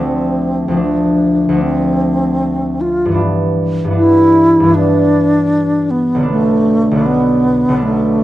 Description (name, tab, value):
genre	classical, impressionist duo for alto flute and harp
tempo	77 BPM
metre	4/4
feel	rubato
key	unclear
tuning	A4 = 441 Hz
part	bright wooden-headed alto flute	melody	0.0-8.2 s	A3 to F4	-13 LUFS	equal	none
part	concert harp	accompaniment	0.0-8.2 s	B1 to F4	-15 LUFS	equal	none
room	moderate stone room reverb, RT60 1.3 s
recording	dark, warm production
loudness	-11 LUFS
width	side -14 dB against mid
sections	0.0-8.2 A section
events	none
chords	0.0 Dm7; 3.2 G6; 6.3 Bm7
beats	| 0.02 0.82 1.63 2.42 | 3.21 3.99 4.75 5.52 | 6.29 7.06 7.83